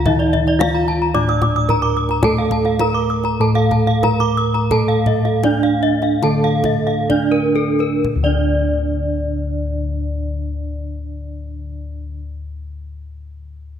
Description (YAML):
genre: Balinese gamelan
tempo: 60-110 BPM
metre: 4/4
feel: straight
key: D pelog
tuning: A4 = 442 Hz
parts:
  - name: gamelan-type bronze metallophone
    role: melody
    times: 0.0-12.2 s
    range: D4 to D5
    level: -21 LUFS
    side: right 4 dB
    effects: none
  - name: gamelan-type bronze metallophone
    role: accompaniment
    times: 0.0-12.2 s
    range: D3 to D4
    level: -25 LUFS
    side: right 2 dB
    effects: none
  - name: gamelan-type bronze metallophone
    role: arpeggios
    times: 0.0-12.2 s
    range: A4 to Eb6+35c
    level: -23 LUFS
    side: left 5 dB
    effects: none
  - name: gamelan-type bossed gongs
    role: bass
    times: 0.0-12.1 s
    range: D2 to A4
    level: -21 LUFS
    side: left 2 dB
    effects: none
  - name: kendang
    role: percussion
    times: 0.1-8.5 s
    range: none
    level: -25 LUFS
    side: left 1 dB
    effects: none
  - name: gamelan-type bronze metallophone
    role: arpeggios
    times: 0.2-12.2 s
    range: Bb4 to Eb6+35c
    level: -24 LUFS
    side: right 2 dB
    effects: none
room: moderate concert hall reverb, RT60 2.5 s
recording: none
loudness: -15 LUFS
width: side -9 dB against mid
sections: 0.0-8.0 A section; 8.0-13.8 B section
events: slowing down 2.2-8.0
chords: none